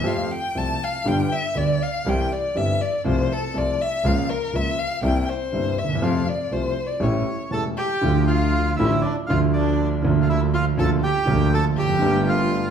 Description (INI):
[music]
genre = tango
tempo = 121 BPM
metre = 4/4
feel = rubato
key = F major, D minor from 8.0 s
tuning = A4 = 440 Hz
[part]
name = warm violin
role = second line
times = 0.0-12.7 s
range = D4 to A5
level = -26 LUFS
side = left 3 dB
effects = none
[part]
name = warm concert grand piano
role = accompaniment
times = 0.0-12.7 s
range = E1 to G4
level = -22 LUFS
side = right 2 dB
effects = none
[part]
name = rich double bass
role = bass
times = 0.0-12.7 s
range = F1 to F2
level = -26 LUFS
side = equal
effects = none
[part]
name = bandoneon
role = melody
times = 7.5-12.7 s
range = D4 to A5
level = -26 LUFS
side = right 3 dB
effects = none
[sound]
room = wet large studio reverb, RT60 1.2 s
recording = band playing live in one room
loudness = -19 LUFS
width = side -7 dB against mid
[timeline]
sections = 0.0-8.0 A section; 8.0-12.7 B section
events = violin solo 0.0-8.0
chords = 0.0 Fadd9; 1.1 G; 2.1 C; 3.1 F/C; 4.0 Bbm/Db; 5.0 C7; 6.0 F; 7.0 A7; 8.0 Dm; 10.0 Bb/D; 12.0 Gmadd9